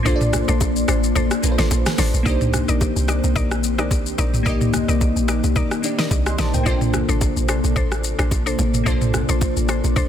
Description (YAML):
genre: amapiano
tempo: 109 BPM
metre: 4/4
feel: swing 55% on 16ths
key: C dorian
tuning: A4 = 440 Hz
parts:
  - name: glassy digital keys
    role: accompaniment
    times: 0.0-10.1 s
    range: Bb3 to C6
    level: -26 LUFS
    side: right 1 dB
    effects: chorus
  - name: glassy FM pad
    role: sustained chords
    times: 0.0-10.1 s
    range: C3 to D6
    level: -25 LUFS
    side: left 3 dB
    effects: ensemble chorus, built-in reverb, sidechain pumping
  - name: deep log drum bass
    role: bass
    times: 0.0-10.0 s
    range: A1 to C2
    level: -21 LUFS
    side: equal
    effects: none
  - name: mallet-like synth pluck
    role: stabs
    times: 0.1-10.1 s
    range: D4 to D5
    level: -28 LUFS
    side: left 5 dB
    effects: chorus, ping-pong delay
  - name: smooth R&B drum kit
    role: drums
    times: 0.1-10.1 s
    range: hi-hat, kick drum, rim click, shaker, snare drum, toms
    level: -22 LUFS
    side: equal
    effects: soft clipping on snare
  - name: congas and bongos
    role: percussion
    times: 0.1-10.1 s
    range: none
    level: -31 LUFS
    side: right 3 dB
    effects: none
room: little or no reverb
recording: dense, heavily limited modern master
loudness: -17 LUFS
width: side -9 dB against mid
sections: 0.0-2.3 A section; 2.3-10.1 B section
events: drop 0.0-2.3; kick muted 1.2-2.3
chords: 0.0 Bbmaj9; 2.3 Cm9; 6.7 Bbmaj9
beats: | 0.06 0.61 1.16 1.71 | 2.26 2.81 3.36 3.91 | 4.46 5.01 5.56 6.11 | 6.66 7.21 7.76 8.31 | 8.87 9.41 9.97